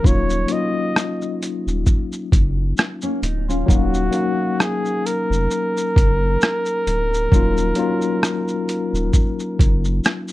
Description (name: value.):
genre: lo-fi hip hop.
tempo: 66 BPM.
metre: 4/4.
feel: swing 56% on 16ths.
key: Eb minor.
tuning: A4 = 440 Hz.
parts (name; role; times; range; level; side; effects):
breathy flugelhorn; melody; 0.0-10.1 s; Gb4 to Eb5; -23 LUFS; equal; low-pass filter, plate reverb.
mellow tine electric piano; accompaniment; 0.0-10.3 s; Gb3 to F5; -23 LUFS; left 4 dB; medium stereo tremolo, cassette tape, low-pass filter.
soft dub sub bass; bass; 0.0-10.0 s; D1 to Gb1; -21 LUFS; equal; none.
boom bap sampler-style drum kit; drums; 0.0-10.3 s; hi-hat, kick drum, rim click, shaker; -17 LUFS; equal; none.
nylon-string guitar; second line; 3.0-4.8 s; Bb3 to F4; -27 LUFS; left 2 dB; low-pass filter, plate reverb.
room: light reverb.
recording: dark, warm production.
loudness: -17 LUFS.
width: side -16 dB against mid.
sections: 0.0-10.3 A section.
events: none.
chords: 0.0 Ebm9.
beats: | 0.04 0.95 1.86 2.77 | 3.68 4.59 5.50 6.41 | 7.32 8.22 9.13 10.04.